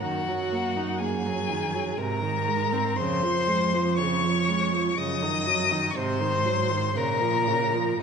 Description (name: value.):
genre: classical, slow romantic movement for string quartet.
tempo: 61 BPM.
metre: 3/4.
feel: rubato.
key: Db major.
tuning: A4 = 440 Hz.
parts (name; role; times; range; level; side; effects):
rich violin; melody; 0.0-8.0 s; Gb5 to Eb6; -28 LUFS; left 6 dB; none.
rich violin; second line; 0.0-8.0 s; Gb4 to Eb5; -30 LUFS; left 2 dB; none.
rich viola; accompaniment; 0.0-8.0 s; C3 to Eb4; -30 LUFS; right 4 dB; none.
warm cello; bass; 0.0-8.0 s; F2 to Bb2; -30 LUFS; right 5 dB; none.
room: wet concert hall reverb, RT60 2.1 s.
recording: nothing above 10.4 kHz.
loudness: -23 LUFS.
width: side -6 dB against mid.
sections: 0.0-8.0 A section.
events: none.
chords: 0.0 Ebm/Gb; 2.0 Ab; 3.0 Db/F; 5.0 Ebm7/Gb; 6.0 Ab7; 7.0 Bbm.